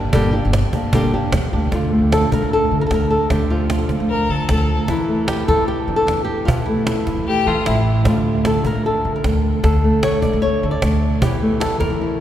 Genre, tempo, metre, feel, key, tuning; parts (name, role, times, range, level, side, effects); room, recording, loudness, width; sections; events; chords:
flamenco; 152 BPM; 4/4; straight; A4 = 439 Hz
flamenco guitar; melody; 0.0-12.2 s; D3 to D5; -19 LUFS; left 1 dB
upright bass; bass; 0.0-12.2 s; G1 to E3; -20 LUFS; equal
cajon; percussion; 0.1-12.0 s; -23 LUFS; right 1 dB
rich violin; second line; 4.1-4.8, 7.3-8.0 s; E4 to Bb4; -25 LUFS; left 4 dB
wet cathedral reverb, RT60 5.5 s; recorded in a church or concert hall; -15 LUFS; side -11 dB against mid
0.0-1.7 A section; 1.7-12.2 B section
0.0 Gm; 1.7 Dm; 4.9 A5/E; 8.1 Dm; 11.2 A5/E